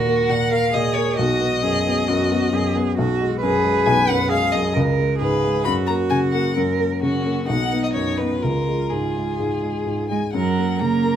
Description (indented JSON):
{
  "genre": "quick classical-period movement for piano quartet",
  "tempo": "122-136 BPM",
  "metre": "4/4",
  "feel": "rubato",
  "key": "F# major",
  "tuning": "A4 = 440 Hz",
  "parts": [
    { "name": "rich violin", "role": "melody", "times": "0.0-11.2 s", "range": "F#4 to B5", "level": "-24 LUFS", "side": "left 4 dB", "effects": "none" },
    { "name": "rich cello", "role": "second line", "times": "0.0-11.2 s", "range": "F#3 to B4", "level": "-23 LUFS", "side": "right 7 dB", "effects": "none" },
    { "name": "warm baby grand piano", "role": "accompaniment", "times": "0.0-11.2 s", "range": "B1 to B3", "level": "-21 LUFS", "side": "left 2 dB", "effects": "none" },
    { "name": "clear viola", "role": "accompaniment", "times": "10.3-11.2 s", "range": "A#4", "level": "-26 LUFS", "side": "right 4 dB", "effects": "none" }
  ],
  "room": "moderate large studio reverb, RT60 1.5 s",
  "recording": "close, detailed microphones, faint mains hum",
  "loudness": "-18 LUFS",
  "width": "side -9 dB against mid",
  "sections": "0.0-10.3 A section",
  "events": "none",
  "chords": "0.0 Ebm; 1.2 B; 3.0 G#m7/B; 4.8 C#5; 5.7 F#; 7.5 B; 8.4 C#; 10.3 F#"
}